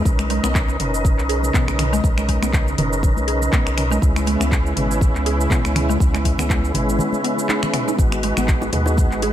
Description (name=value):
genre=afro house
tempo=121 BPM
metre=4/4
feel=swing 56% on 16ths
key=unclear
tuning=A4 = 444 Hz
part: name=warm analog pad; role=sustained chords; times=0.0-9.3 s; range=C#3 to D#5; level=-28 LUFS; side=left 1 dB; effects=chorus, sidechain pumping
part: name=mallet-like synth pluck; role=arpeggios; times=0.0-9.3 s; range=G#3 to G#4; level=-27 LUFS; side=right 1 dB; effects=chorus, sidechain pumping, digital delay
part: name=tonewheel organ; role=stabs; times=0.0-9.3 s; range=G#3 to B4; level=-24 LUFS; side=right 1 dB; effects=chorus vibrato, stopped rotary speaker, vintage 12-bit sampler grit, sidechain pumping, digital delay
part: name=warm sub bass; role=bass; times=0.0-9.3 s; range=F#1 to D#2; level=-22 LUFS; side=equal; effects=sidechain pumping
part: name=electronic kick drum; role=drums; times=0.1-9.1 s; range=none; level=-18 LUFS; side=equal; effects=studio reverb
part: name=house drum kit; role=drums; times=0.1-9.3 s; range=cabasa, finger snaps, handclaps, hi-hat, toms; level=-26 LUFS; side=equal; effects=studio reverb
part: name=congas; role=percussion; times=0.3-9.1 s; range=none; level=-28 LUFS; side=left 3 dB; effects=none
part: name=swell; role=sound effects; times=7.3-8.0 s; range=none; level=-32 LUFS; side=left 4 dB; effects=none
part: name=bongos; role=percussion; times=8.4-9.3 s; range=none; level=-30 LUFS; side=equal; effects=none
room=light reverb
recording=none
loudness=-16 LUFS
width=side -11 dB against mid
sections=0.0-9.3 A section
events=swell 7.3-8.0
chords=0.1 Bmaj9; 4.0 C#m7; 8.0 G#m7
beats=| 0.05 0.55 1.05 1.54 | 2.04 2.53 3.03 3.52 | 4.02 4.52 5.01 5.51 | 6.00 6.50 7.00 7.49 | 7.99 8.48 8.98